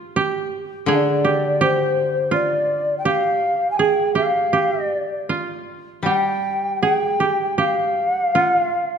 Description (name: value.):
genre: japanese traditional, Japanese chamber music.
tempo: 78-86 BPM.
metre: 4/4.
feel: rubato.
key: G in sen.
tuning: A4 = 440 Hz.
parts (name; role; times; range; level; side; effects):
koto; second line; 0.0-9.0 s; F4 to Ab4; -21 LUFS; right 5 dB; none.
mellow long shakuhachi; melody; 0.9-9.0 s; C5 to Ab5; -20 LUFS; left 1 dB; none.
koto; accompaniment; 0.9-8.3 s; D3 to G3; -26 LUFS; left 6 dB; none.
room: moderate scoring stage reverb, RT60 2.0 s.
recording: dark, warm production.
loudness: -17 LUFS.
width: side -7 dB against mid.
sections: 0.0-9.0 A section.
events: none.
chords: none.